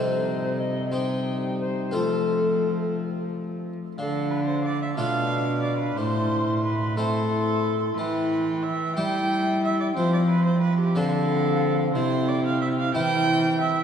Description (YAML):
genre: classical, renaissance-style consort dance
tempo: 60 BPM (dotted quarters)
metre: 6/8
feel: straight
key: unclear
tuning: A4 = 436 Hz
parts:
  - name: mellow alto recorder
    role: melody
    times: 0.0-13.8 s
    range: A4 to D6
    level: -31 LUFS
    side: left 3 dB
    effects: none
  - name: rich viola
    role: second line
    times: 0.0-13.8 s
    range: C4 to G5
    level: -28 LUFS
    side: right 2 dB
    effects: none
  - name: harpsichord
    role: accompaniment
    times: 0.0-13.8 s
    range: A2 to A4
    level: -30 LUFS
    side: left 1 dB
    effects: none
  - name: mellow trombone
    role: accompaniment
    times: 0.0-13.8 s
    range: G3 to E4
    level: -29 LUFS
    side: left 1 dB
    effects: none
  - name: rich cello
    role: bass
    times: 0.0-13.8 s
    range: A2 to G3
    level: -27 LUFS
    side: right 1 dB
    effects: none
room: wet cathedral reverb, RT60 5.0 s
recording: heard from further back in the room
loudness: -22 LUFS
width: side -8 dB against mid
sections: 0.0-4.0 A section; 4.0-13.8 A section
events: none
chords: 0.0 Cm; 2.0 F; 4.0 Dm; 6.0 Am; 8.0 Em; 10.0 F; 11.9 C